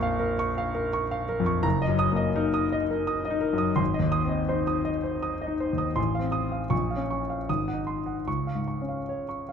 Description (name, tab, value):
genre	classical, romantic character piece for solo piano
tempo	73-85 BPM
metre	3/4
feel	rubato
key	unclear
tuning	A4 = 438 Hz
part	warm concert grand piano	solo	0.0-9.5 s	Gb1 to Eb6	-24 LUFS	left 1 dB	none
room	moderate recital hall reverb, RT60 1.4 s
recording	close, detailed microphones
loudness	-24 LUFS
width	side -7 dB against mid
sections	0.0-9.5 A section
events	none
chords	0.0 Bbm; 1.6 Ebm/Gb; 3.8 Ab; 6.0 F7/A; 6.7 Bbm; 7.5 Ab7; 8.3 Db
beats	0.23 0.94 | 1.65 2.37 3.09 | 3.80 4.52 5.24 | 5.97 6.71 7.48 | 8.27 9.08